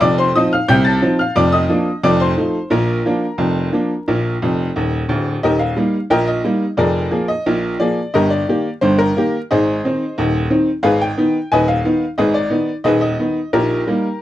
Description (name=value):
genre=ragtime piano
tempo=89 BPM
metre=2/4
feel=straight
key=Bb major, Eb major from 5.4 s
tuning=A4 = 442 Hz
part: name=tack piano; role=solo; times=0.0-14.2 s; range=D1 to A6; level=-14 LUFS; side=equal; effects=none
room=light reverb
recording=dry, close 1970s-style studio recording, vinyl crackle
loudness=-14 LUFS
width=side -13 dB against mid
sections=0.0-5.4 A section; 5.4-14.2 B section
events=honky-tonk piano fill 4.4-5.4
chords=0.0 F7; 1.4 Bb/F; 2.0 F7; 2.7 Bb; 5.4 Eb; 6.8 Bb5/F; 8.1 Eb/G; 9.5 Ab; 10.8 Abm; 13.5 Eb/Bb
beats=| 0.02 0.69 | 1.36 2.04 | 2.72 3.40 | 4.08 4.76 | 5.44 6.11 | 6.79 7.46 | 8.13 8.81 | 9.49 10.16 | 10.83 11.50 | 12.17 12.84 | 13.52 14.19